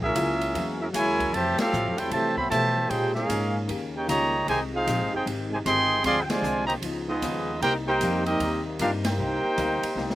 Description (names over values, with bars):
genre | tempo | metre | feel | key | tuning
jazz, big band swing | 153 BPM | 4/4 | swing 65% on 8ths | C minor | A4 = 443 Hz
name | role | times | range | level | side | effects
mellow trumpet section | melody | 0.0-10.2 s | Cb4 to C6 | -25 LUFS | right 1 dB | slapback echo
mellow trombone section | second line | 0.0-10.2 s | C3 to G4 | -31 LUFS | right 2 dB | none
hollow-body jazz guitar | accompaniment | 0.0-10.2 s | Bb2 to G#4 | -34 LUFS | left 5 dB | none
mellow trombone section | sustained chords | 0.0-10.2 s | C3 to F#4 | -37 LUFS | left 2 dB | none
upright bass | bass | 0.0-10.2 s | G1 to C3 | -32 LUFS | equal | none
open jazz drum kit | drums | 0.0-10.2 s | hi-hat, kick drum, ride cymbal, snare drum | -35 LUFS | equal | none
room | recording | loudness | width
little or no reverb | recorded outdoors, with no room sound | -23 LUFS | side -15 dB against mid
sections
0.0-10.2 A section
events
band accent 1.5, 6.2, 9.0; drum fill 10.0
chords
0.0 F#9; 1.3 Fmaj9; 2.9 Bbm7; 3.7 Eb7; 4.5 Abmaj7; 6.0 Dm7b5; 6.8 Db9; 7.6 Cm7